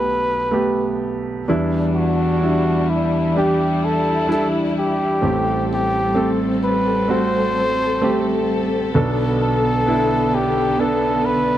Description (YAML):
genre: pop ballad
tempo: 64 BPM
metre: 4/4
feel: straight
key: E minor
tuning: A4 = 438 Hz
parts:
  - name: trumpet with bucket mute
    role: melody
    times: 0.0-11.6 s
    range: E4 to C5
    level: -21 LUFS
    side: left 1 dB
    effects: slapback echo
  - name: warm concert grand piano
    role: accompaniment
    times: 0.0-11.6 s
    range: A1 to A4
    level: -20 LUFS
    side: right 2 dB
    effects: none
  - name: warm studio string section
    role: sustained chords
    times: 1.5-11.6 s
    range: D3 to A4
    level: -23 LUFS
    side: left 2 dB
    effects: none
room: studio ambience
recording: dry, close 1970s-style studio recording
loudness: -16 LUFS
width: side -12 dB against mid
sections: 0.0-11.6 A section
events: none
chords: 0.0 Gadd9/B; 1.5 Em7; 5.2 Am7; 8.9 Bm7